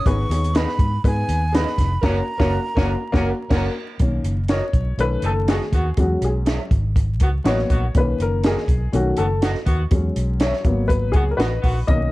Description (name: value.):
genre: uptempo 1960s-style soul.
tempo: 122 BPM.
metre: 4/4.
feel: straight.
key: B major.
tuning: A4 = 442 Hz.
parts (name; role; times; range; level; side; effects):
breathy hollow jazz flute; melody; 0.0-3.5 s; G#5 to C#6; -27 LUFS; right 2 dB; none.
warm upright piano; accompaniment; 0.1-12.1 s; D#3 to D#5; -24 LUFS; left 2 dB; none.
vintage muted fingered electric bass; bass; 0.1-12.1 s; E#1 to G#2; -22 LUFS; equal; none.
compact cocktail drum kit; drums; 0.1-12.0 s; crash cymbal, hi-hat, kick drum, snare drum; -21 LUFS; equal; none.
electric guitar through a small old amp; stabs; 0.5-11.5 s; F#4 to F#5; -30 LUFS; right 4 dB; analog chorus.
clear horn section; second line; 2.0-11.8 s; D#3 to A#4; -30 LUFS; equal; none.
percussive tonewheel organ; sustained chords; 11.9-12.1 s; B2 to D#4; -29 LUFS; right 1 dB; overdrive, chorus vibrato, slow rotary speaker.
room: small room ambience.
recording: dark, warm production, vinyl crackle.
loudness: -18 LUFS.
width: side -18 dB against mid.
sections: 0.0-4.0 A section; 4.0-12.1 B section.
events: band accent 2.0-4.0; upright piano solo 4.0-12.1.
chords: 0.1 G#m; 2.0 F#; 4.0 Bmaj7; 5.0 B7; 6.0 E6; 6.7 G#m7; 7.9 Bmaj7; 8.9 B7; 9.9 E6; 10.7 G#m7.